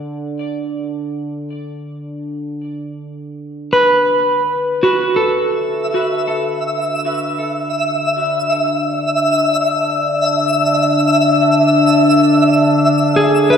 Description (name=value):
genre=ambient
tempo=free time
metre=none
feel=none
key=D major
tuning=A4 = 440 Hz
part: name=analog drone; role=drone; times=0.0-13.6 s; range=D3 to D4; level=-18 LUFS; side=left 1 dB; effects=chorus
part: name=clean electric guitar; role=arpeggios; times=3.7-6.2, 13.2-13.6 s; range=F#4 to B4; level=-15 LUFS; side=right 1 dB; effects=tape echo
part: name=twinkling granular texture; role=texture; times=5.8-13.6 s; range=E5 to E6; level=-16 LUFS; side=equal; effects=built-in reverb
room=wet lush hall reverb, RT60 2.8 s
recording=dark, warm production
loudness=-13 LUFS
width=side -7 dB against mid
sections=0.0-5.4 A section; 5.4-13.6 B section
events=fade-out on synth drone 0.0-5.4; fade-in on synth drone 5.4-13.6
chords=0.0 N.C.; 2.1 Bm/D; 12.1 E7/D